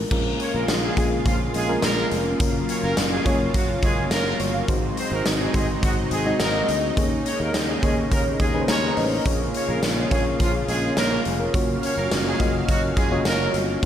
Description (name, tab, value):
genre	1980s-style pop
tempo	105 BPM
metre	4/4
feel	straight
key	Bb minor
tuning	A4 = 440 Hz
part	mellow FM electric piano	accompaniment	0.0-13.9 s	Gb3 to Bb5	-25 LUFS	left 2 dB	chorus
part	sustaining fretless electric bass	bass	0.0-13.9 s	F1 to Eb2	-28 LUFS	equal	none
part	lush unison pad	sustained chords	0.1-13.9 s	C3 to F5	-30 LUFS	right 2 dB	chorus
part	big rock drum kit	drums	0.1-13.9 s	crash cymbal, hi-hat, kick drum, snare drum, tambourine	-24 LUFS	equal	gated reverb
part	warm horn section	stabs	0.4-13.5 s	F3 to Db5	-29 LUFS	right 2 dB	none
room	light reverb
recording	none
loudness	-20 LUFS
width	side -10 dB against mid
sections	0.1-13.9 A section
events	FM electric piano fill 8.4-9.3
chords	0.1 Bbm7; 2.4 Gbmaj7; 4.7 Ab7; 7.0 Eb7sus4; 9.3 Bbm7; 11.5 Gbmaj7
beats	| 0.11 0.69 1.26 1.83 | 2.40 2.97 3.54 4.11 | 4.69 5.26 5.83 6.40 | 6.97 7.54 8.11 8.69 | 9.26 9.83 10.40 10.97 | 11.54 12.11 12.69 13.26 | 13.83